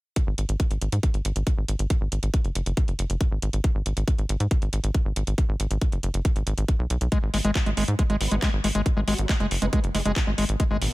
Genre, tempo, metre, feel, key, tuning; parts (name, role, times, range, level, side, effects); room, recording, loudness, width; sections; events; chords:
psychedelic trance; 138 BPM; 4/4; straight; G# minor; A4 = 440 Hz
electronic kick drum; drums; 0.2-10.7 s; -23 LUFS; equal
garage drum kit; drums; 0.2-10.9 s; handclaps, hi-hat; -32 LUFS; equal
tight sequencer bass; bass; 0.3-10.9 s; F#1 to G#2; -25 LUFS; equal
overdriven acid bass; riff; 7.1-10.8 s; G#3; -27 LUFS; left 1 dB; distortion, auto-pan, cassette tape, sidechain pumping, dub echo
formant-sweep wobble bass; second line; 8.2-10.1 s; F#3 to B3; -37 LUFS; right 1 dB; ensemble chorus, sidechain pumping, high-pass filter, tape echo
riser; sound effects; 10.8-10.9 s; -35 LUFS; right 1 dB
digital ambience; -22 LUFS; side -19 dB against mid
0.2-10.9 A section